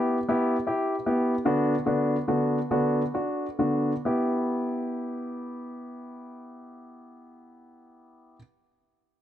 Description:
pop; 42-53 BPM (dotted quarters); 6/8; straight; E minor; A4 = 438 Hz
warm concert grand piano; solo; 0.0-8.4 s; D3 to G4; -25 LUFS; equal
light reverb; dark, warm production; -24 LUFS; side -11 dB against mid
0.0-4.1 A section; 4.1-6.9 B section
slowing down 0.0-4.1
0.0 Em; 1.5 Bm/D; 4.1 Em
0.29 | 1.46 2.70 | 4.06 5.48

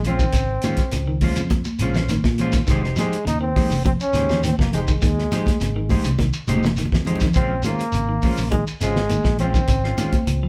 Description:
afrobeat; 103 BPM; 4/4; straight; Bb dorian; A4 = 439 Hz
clear trombone; melody; 0.0-10.5 s; Ab3 to Eb4; -28 LUFS; equal
clean electric guitar; arpeggios; 0.0-10.5 s; Db3 to F3; -31 LUFS; equal
fingered electric bass; bass; 0.0-10.5 s; F1 to Bb2; -26 LUFS; equal
damped 70s drum kit; drums; 0.0-10.4 s; hi-hat, kick drum, snare drum; -24 LUFS; equal
shekere; percussion; 0.0-10.4 s; -33 LUFS; equal
clean electric guitar; stabs; 0.1-10.2 s; Ab3 to C5; -30 LUFS; equal; slapback echo
congas; percussion; 0.1-10.3 s; -27 LUFS; equal
moderate studio reverb, RT60 0.7 s; band playing live in one room; -20 LUFS; mono
0.0-10.5 A section
drum fill 6.5-7.4
0.0 Bbm9; 2.7 Fm9; 7.4 Bbm9
| 0.34 0.93 1.51 2.10 | 2.68 3.27 3.85 4.43 | 5.02 5.60 6.19 6.77 | 7.36 7.94 8.52 9.11 | 9.69 10.27

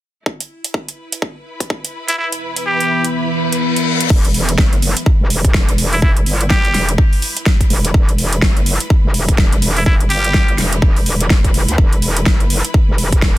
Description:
bass house; 125 BPM; 4/4; swing 60% on 16ths; E minor; A4 = 442 Hz
electronic kick drum; drums; 0.3-13.3 s; -13 LUFS; equal; overdrive, high-pass filter on kick, small room ambience
bright studio string section; texture; 0.3-13.4 s; E4 to B5; -28 LUFS; left 1 dB; sidechain pumping
big-room dance drum kit; drums; 0.4-13.3 s; crash cymbal, hi-hat, snare drum; -19 LUFS; right 1 dB; overdrive, small room ambience
trumpet with straight mute; melody; 2.1-3.0, 5.9-10.6 s; E4 to G4; -19 LUFS; equal; digital delay
deep dark ambient pad; sustained chords; 2.6-4.1 s; E3 to E5; -21 LUFS; equal; chorus, built-in reverb, vintage 12-bit sampler grit, sidechain pumping
reverse cymbal; sound effects; 3.3-4.1 s; -22 LUFS; left 6 dB
metallic wobble bass; bass; 4.1-13.4 s; E1 to D2; -18 LUFS; equal; chorus, sidechain pumping
little or no reverb; dense, heavily limited modern master; -12 LUFS; side -15 dB against mid
0.3-4.1 A section; 4.1-13.4 B section
fade-in on string section 0.3-4.1, 4.1-13.4; kick drops out 2.2-4.1; reverse cymbal 3.3-4.1
0.3 E5
| 0.26 0.74 1.22 1.70 | 2.18 2.66 3.14 3.62 | 4.10 4.58 5.06 5.54 | 6.02 6.50 6.98 7.46 | 7.94 8.42 8.90 9.38 | 9.86 10.34 10.82 11.30 | 11.78 12.26 12.74 13.22

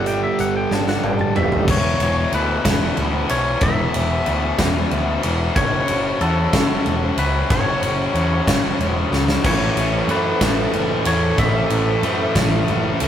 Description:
quiet-loud alternative rock; 62 BPM (dotted quarters); 6/8; straight; A4 = 442 Hz
twangy electric guitar; melody; 0.0-13.0 s; A4 to A5; -25 LUFS; left 1 dB; spring reverb
fingerpicked swing-style acoustic guitar; arpeggios; 0.0-1.7 s; G3 to G4; -26 LUFS; right 2 dB
overdriven semi-hollow guitar; riff; 0.0-1.7, 9.4-13.1 s; G2 to A3; -24 LUFS; right 5 dB
tight distorted guitar; riff; 0.0-13.1 s; E2 to A3; -24 LUFS; left 5 dB; distortion
growling picked electric bass; bass; 0.0-13.1 s; E1 to F#2; -23 LUFS; equal; overdrive
huge arena drum kit; drums; 0.1-13.1 s; crash cymbal, hi-hat, kick drum, ride cymbal, snare drum, toms; -20 LUFS; equal
moderate studio reverb, RT60 0.6 s; rough rehearsal-room recording, tube saturation; -16 LUFS; side -10 dB against mid
0.0-1.7 A section; 1.7-13.1 B section
clean electric guitar solo 0.0-1.7; drum fill 0.7-1.7, 9.1-9.4
0.0 Gsus2; 1.7 E5; 5.6 F#m; 9.4 A
0.71 | 1.68 2.65 | 3.62 4.59 | 5.56 6.53 | 7.50 8.47 | 9.44 10.41 | 11.39 12.36

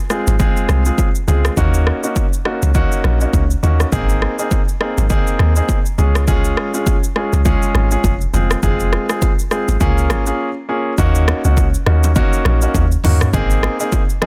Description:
afrobeats; 102 BPM; 4/4; swing 58% on 16ths; Eb dorian; A4 = 440 Hz
clear concert grand piano; accompaniment; 0.1-14.3 s; Ab3 to Ab4; -22 LUFS; equal
afro-pop drum kit; drums; 0.1-14.3 s; hi-hat, kick drum, rim click, shaker, toms; -20 LUFS; equal; soft clipping on snare
deep log drum bass; bass; 0.3-13.7 s; F1 to Eb2; -17 LUFS; equal
bongos and congas; percussion; 0.3-14.3 s; -30 LUFS; equal
little or no reverb; dense, heavily limited modern master; -16 LUFS; mono
0.0-11.0 A section; 11.0-14.3 B section
break 10.4-11.0
0.0 Fm; 1.6 Ebm7; 3.9 Abadd9; 6.0 Db; 8.3 Fm; 9.8 Db6; 11.0 Ebm7; 13.3 Abadd9
0.40 0.98 | 1.57 2.16 2.75 3.34 | 3.92 4.51 5.10 5.69 | 6.28 6.87 7.45 8.04 | 8.63 9.22 9.81 10.39 | 10.98 11.57 12.16 12.75 | 13.34 13.92

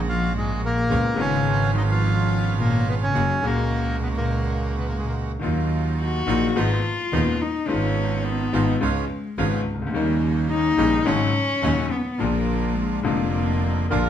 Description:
tango; 106 BPM; 4/4; rubato; F# major, Eb minor from 5.4 s; A4 = 442 Hz
bright concert grand piano; accompaniment; 0.0-14.1 s; Eb1 to Ab4; -25 LUFS; left 4 dB
bandoneon; stabs; 0.0-14.1 s; Gb3 to F#4; -32 LUFS; right 6 dB
clear double bass; bass; 0.0-14.1 s; F1 to Eb2; -25 LUFS; right 3 dB
bandoneon; melody; 0.1-5.2 s; G#3 to E#4; -26 LUFS; right 1 dB; plate reverb
dark cello; second line; 0.1-14.1 s; G#2 to Gb4; -25 LUFS; left 4 dB
warm clarinet; second line; 13.9-14.1 s; Bb4; -26 LUFS; right 1 dB
moderate large studio reverb, RT60 1.0 s; -20 LUFS; side -10 dB against mid
0.0-5.4 A section; 5.4-14.1 B section
cello solo 5.4-14.1
0.0 F#add9/A#; 0.9 C#7; 3.1 F#add9; 5.4 Ebmadd9; 6.6 Abm; 7.7 Fm7b5/Ab; 8.8 Db7; 9.9 Eb7; 11.1 Ab7sus4; 12.2 Bb
0.33 | 0.89 1.45 2.02 2.58 | 3.15 3.71 4.28 4.85 | 5.42 5.99 6.56 7.13 | 7.69 8.25 8.82 9.38 | 9.94 10.50 11.06 11.63 | 12.20 12.76 13.33 13.91

